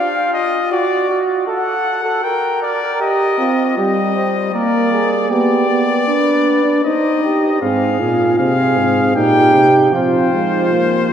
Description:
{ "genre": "classical, imitative canzona for brass ensemble", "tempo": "78 BPM", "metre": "3/4", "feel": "straight", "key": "C minor, F minor from 7.6 s", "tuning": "A4 = 439 Hz", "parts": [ { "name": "brilliant trumpet", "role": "melody", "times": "0.0-11.1 s", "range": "C5 to G5", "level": "-19 LUFS", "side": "left 4 dB", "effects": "none" }, { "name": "mellow flugelhorn", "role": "second line", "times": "0.0-11.1 s", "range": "F4 to C5", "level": "-18 LUFS", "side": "right 3 dB", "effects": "none" }, { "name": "warm euphonium", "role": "accompaniment", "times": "3.4-11.1 s", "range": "G3 to F4", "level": "-16 LUFS", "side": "equal", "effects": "none" }, { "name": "warm bass trombone", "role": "bass", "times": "7.6-11.1 s", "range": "Ab2 to F3", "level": "-19 LUFS", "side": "equal", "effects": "none" } ], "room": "wet cathedral reverb, RT60 5.1 s", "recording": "heard from further back in the room", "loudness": "-13 LUFS", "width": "side -8 dB against mid", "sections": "0.0-7.6 A section; 7.6-11.1 B section", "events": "none", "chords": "0.0 Ebsus2/F; 0.7 D/F#; 2.2 Gm/Bb; 3.0 Cm; 4.5 Bb; 5.3 G/B; 6.8 Cm/Eb; 7.6 Fm/Ab; 9.2 Eb6/Bb; 9.9 Csus4/F" }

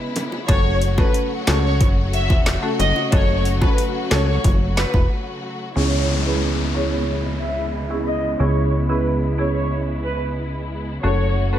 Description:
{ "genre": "dancehall", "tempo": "91 BPM", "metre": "4/4", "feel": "straight", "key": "C# minor", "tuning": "A4 = 440 Hz", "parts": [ { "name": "warm studio string section", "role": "sustained chords", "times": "0.0-11.6 s", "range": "C#3 to F#4", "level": "-29 LUFS", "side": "left 1 dB", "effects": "sidechain pumping, low-pass filter" }, { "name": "afro-pop drum kit", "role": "drums", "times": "0.2-5.1 s", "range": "handclaps, hi-hat, kick drum, snare drum", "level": "-19 LUFS", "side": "equal", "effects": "overdrive" }, { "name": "bongos", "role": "percussion", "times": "0.2-5.1 s", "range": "none", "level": "-29 LUFS", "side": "equal", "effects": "none" }, { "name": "warm studio violin section", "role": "melody", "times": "0.5-11.6 s", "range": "B4 to E5", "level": "-26 LUFS", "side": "equal", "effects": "low-pass filter, digital delay" }, { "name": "marimba with medium mallets", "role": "accompaniment", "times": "0.5-11.6 s", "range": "A3 to A4", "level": "-26 LUFS", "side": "equal", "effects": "sidechain pumping, low-pass filter" }, { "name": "plucky analog bass", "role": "bass", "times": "0.5-11.6 s", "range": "E1 to C#2", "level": "-21 LUFS", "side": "equal", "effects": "none" }, { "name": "downlifter", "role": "sound effects", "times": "5.8-11.0 s", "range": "none", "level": "-29 LUFS", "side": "left 2 dB", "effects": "none" } ], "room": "little or no reverb", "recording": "none", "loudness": "-17 LUFS", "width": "side -11 dB against mid", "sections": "0.0-5.8 A section; 5.8-11.6 B section", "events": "break 5.1-5.8; filter sweep 5.8-11.6", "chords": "0.5 F#m; 5.8 C#m7; 11.0 F#m" }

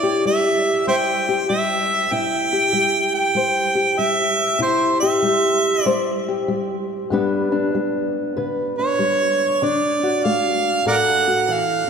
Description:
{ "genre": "acoustic country blues, solo or duo", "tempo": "96 BPM", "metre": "4/4", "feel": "swing 65% on 8ths", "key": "unclear", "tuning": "A4 = 440 Hz", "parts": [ { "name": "clear harmonica", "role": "melody", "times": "0.0-11.9 s", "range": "Bb4 to G5", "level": "-19 LUFS", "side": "right 2 dB", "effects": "none" }, { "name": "fingerpicked old ladder-braced acoustic guitar", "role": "accompaniment", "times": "0.0-11.9 s", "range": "G2 to C5", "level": "-20 LUFS", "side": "left 2 dB", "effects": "none" } ], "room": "wet church reverb, RT60 3.5 s", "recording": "recorded in a church or concert hall", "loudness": "-17 LUFS", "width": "side -6 dB against mid", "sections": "0.0-11.9 A section", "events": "none", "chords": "0.0 C; 7.1 G; 9.6 D" }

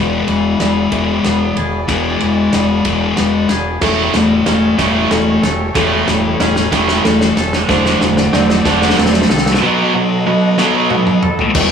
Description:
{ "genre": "post-rock", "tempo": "62 BPM (dotted quarters)", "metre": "6/8", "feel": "straight", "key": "unclear", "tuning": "A4 = 438 Hz", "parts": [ { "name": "dark symphonic string section", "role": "sustained chords", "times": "0.0-11.7 s", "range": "G#3 to G5", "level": "-25 LUFS", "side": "right 2 dB", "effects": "none" }, { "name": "felt-muted upright piano", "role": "arpeggios", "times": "0.0-11.7 s", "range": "A4 to D#5", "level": "-25 LUFS", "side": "right 4 dB", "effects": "slapback echo" }, { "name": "twangy electric guitar", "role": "arpeggios", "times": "0.0-11.7 s", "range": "E2 to A4", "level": "-22 LUFS", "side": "left 2 dB", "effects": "slapback echo" }, { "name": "thick fuzz guitar", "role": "riff", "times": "0.0-11.7 s", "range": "B2 to E4", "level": "-15 LUFS", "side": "left 4 dB", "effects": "distortion" }, { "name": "growling fingered electric bass", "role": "bass", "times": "0.0-11.7 s", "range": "E1 to C2", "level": "-21 LUFS", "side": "equal", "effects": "overdrive" }, { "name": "loose indie drum kit", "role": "drums", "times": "0.3-11.7 s", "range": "crash cymbal, kick drum, ride cymbal, snare drum, toms", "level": "-19 LUFS", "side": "equal", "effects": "none" }, { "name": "tight distorted guitar", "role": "riff", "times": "3.8-11.2 s", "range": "A2 to D4", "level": "-17 LUFS", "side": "right 9 dB", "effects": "distortion" } ], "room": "light reverb, small room reverb", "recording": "small room ambience", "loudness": "-11 LUFS", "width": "side -7 dB against mid", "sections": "0.0-11.6 A section", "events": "build-up 0.0-11.6; drum fill 0.0-9.6, 10.6-11.6", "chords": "0.0 E7; 3.8 A7/E; 7.7 D7/E; 9.6 B7" }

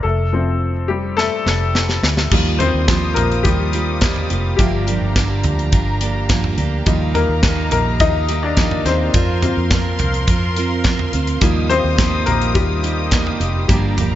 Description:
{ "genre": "piano-driven pop", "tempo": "106 BPM", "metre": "4/4", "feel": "straight", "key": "unclear", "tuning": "A4 = 440 Hz", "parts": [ { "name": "clear upright piano", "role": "accompaniment", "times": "0.0-14.2 s", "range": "F3 to Eb5", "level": "-21 LUFS", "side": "left 6 dB", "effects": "none" }, { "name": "vintage muted fingered electric bass", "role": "bass", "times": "0.0-14.2 s", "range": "F1 to F2", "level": "-20 LUFS", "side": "equal", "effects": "none" }, { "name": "modern studio drum kit", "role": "drums", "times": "1.2-14.1 s", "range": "crash cymbal, hi-hat, kick drum, snare drum, toms", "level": "-18 LUFS", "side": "equal", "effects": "none" }, { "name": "rich studio string section", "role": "sustained chords", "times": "2.3-14.2 s", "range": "G4 to Eb6", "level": "-27 LUFS", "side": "left 1 dB", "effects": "none" }, { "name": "picked steel-string acoustic guitar", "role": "riff", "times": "2.3-14.2 s", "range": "G2 to Bb4", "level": "-23 LUFS", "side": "right 6 dB", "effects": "none" } ], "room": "light reverb, small room ambience", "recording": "nothing above 7.6 kHz", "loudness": "-15 LUFS", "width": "side -12 dB against mid", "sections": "0.0-2.3 A section; 2.3-14.2 B section", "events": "upright piano solo 0.0-2.3, 2.3-14.2; drum fill 1.2-2.3", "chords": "0.0 F; 2.3 Ebadd9; 4.6 Gm7; 6.9 Ebadd9; 9.1 Fsus4; 11.4 Ebadd9" }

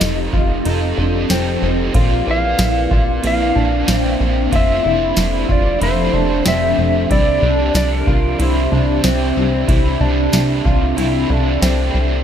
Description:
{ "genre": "dream pop", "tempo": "93 BPM", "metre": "4/4", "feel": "straight", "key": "F major", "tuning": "A4 = 440 Hz", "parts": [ { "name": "clean lap steel guitar", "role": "melody", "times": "0.0-11.6 s", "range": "Bb4 to F5", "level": "-21 LUFS", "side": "equal", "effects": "dub echo" }, { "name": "overdriven electric guitar", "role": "accompaniment", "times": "0.0-12.2 s", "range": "C3 to D5", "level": "-25 LUFS", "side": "right 5 dB", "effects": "tremolo, wide subtle chorus, dub echo" }, { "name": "ethereal airy pad", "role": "sustained chords", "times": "0.0-12.2 s", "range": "C3 to E5", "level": "-22 LUFS", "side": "left 1 dB", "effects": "ensemble chorus, built-in reverb, tremolo" }, { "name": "electric guitar through a small old amp", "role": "arpeggios", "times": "0.0-12.2 s", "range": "D3 to F4", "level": "-21 LUFS", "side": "equal", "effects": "analog chorus, dub echo" }, { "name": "plucky analog bass", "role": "bass", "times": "0.0-12.2 s", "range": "F1 to C2", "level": "-19 LUFS", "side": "equal", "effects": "none" }, { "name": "booming analog drum machine", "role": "drums", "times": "0.0-11.8 s", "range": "kick drum, ride cymbal, snare drum, tambourine", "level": "-19 LUFS", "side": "equal", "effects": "none" } ], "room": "light reverb", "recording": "echo-heavy mix", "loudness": "-14 LUFS", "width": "side -9 dB against mid", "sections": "0.0-12.2 A section", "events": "none", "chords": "0.0 F7; 1.9 Bbadd9; 4.5 F6; 7.1 Cadd9" }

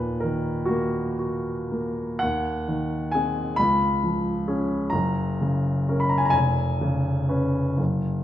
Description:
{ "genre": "classical, romantic nocturne for solo piano", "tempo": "37-47 BPM (dotted quarters)", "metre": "6/8", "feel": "rubato", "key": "unclear", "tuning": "A4 = 439 Hz", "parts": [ { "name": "warm baby grand piano", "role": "solo", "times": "0.0-8.2 s", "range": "E#1 to B5", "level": "-22 LUFS", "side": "equal", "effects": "none" } ], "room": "wet recital hall reverb, RT60 1.6 s", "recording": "minimal, uncompressed stereo recording", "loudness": "-22 LUFS", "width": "side -12 dB against mid", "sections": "0.0-8.2 A section", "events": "none", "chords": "0.0 D#m; 2.2 G#7/D#; 3.6 C#; 4.9 F#; 6.3 C#7/E#" }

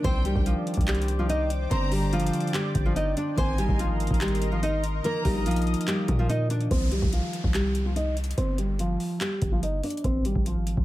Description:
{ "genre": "hip hop, trap", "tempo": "144 BPM", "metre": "4/4", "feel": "half-time", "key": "C minor", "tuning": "A4 = 440 Hz", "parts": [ { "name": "nylon-string guitar", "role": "melody", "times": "0.0-10.8 s", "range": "F3 to Eb5", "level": "-28 LUFS", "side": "equal", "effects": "low-pass filter, ping-pong delay" }, { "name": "dark studio violin section", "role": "second line", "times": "0.0-5.4 s", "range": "G5 to Bb5", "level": "-37 LUFS", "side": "left 1 dB", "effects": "ping-pong delay" }, { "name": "concert harp", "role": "accompaniment", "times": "0.0-9.3 s", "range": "D3 to Eb4", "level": "-33 LUFS", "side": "left 1 dB", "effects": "none" }, { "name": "sweeping resonant pad", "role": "sustained chords", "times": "0.0-6.7 s", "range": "Bb4 to Eb6", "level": "-36 LUFS", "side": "left 1 dB", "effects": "chorus, phaser" }, { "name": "hard-hitting 808-style bass", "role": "bass", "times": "0.0-10.8 s", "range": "G1 to Bb2", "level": "-27 LUFS", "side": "equal", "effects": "none" }, { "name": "booming analog drum machine", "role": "drums", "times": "0.0-10.8 s", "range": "handclaps, hi-hat, kick drum", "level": "-28 LUFS", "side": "equal", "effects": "overdrive" }, { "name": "downlifter", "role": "sound effects", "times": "6.7-10.0 s", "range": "none", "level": "-41 LUFS", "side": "equal", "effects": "none" } ], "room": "little or no reverb", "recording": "none", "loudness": "-23 LUFS", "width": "side -16 dB against mid", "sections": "0.0-6.7 A section; 6.7-10.8 B section", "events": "filter sweep on nylon-string guitar 6.7-10.8", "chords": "0.0 Cmadd9; 1.7 Gsus4; 3.4 Abadd9; 5.0 Bbsus4; 6.7 Cm; 8.4 Gsus4; 10.0 Ab" }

